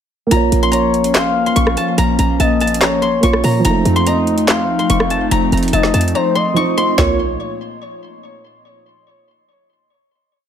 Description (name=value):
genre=hip hop, trap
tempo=144 BPM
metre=4/4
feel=half-time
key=Bb harmonic minor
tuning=A4 = 440 Hz
part: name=guzheng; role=melody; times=0.3-7.2 s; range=A5 to Db6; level=-20 LUFS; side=left 2 dB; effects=tape echo
part: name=dark concert grand piano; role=accompaniment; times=0.3-7.2 s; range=F3 to Db5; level=-20 LUFS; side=right 6 dB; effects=none
part: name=hollow soft pad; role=sustained chords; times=0.3-7.2 s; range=Bb2 to Db5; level=-20 LUFS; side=left 1 dB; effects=chorus
part: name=short 808-style bass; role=bass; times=0.3-7.4 s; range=F1 to Bb2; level=-18 LUFS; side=equal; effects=none
part: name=trap drum kit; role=drums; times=0.3-7.1 s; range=handclaps, hi-hat, rim click, snare drum, toms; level=-19 LUFS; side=equal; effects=none
part: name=gliding portamento lead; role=second line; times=0.7-7.2 s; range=C5 to F5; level=-21 LUFS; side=left 5 dB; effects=chorus, tape echo
room=light reverb, digital ambience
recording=none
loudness=-12 LUFS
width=side -9 dB against mid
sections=0.3-7.0 hook; 7.0-8.6 final chord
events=drums muted 6.1-7.0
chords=0.3 Bbm; 3.6 F7; 7.0 Bbm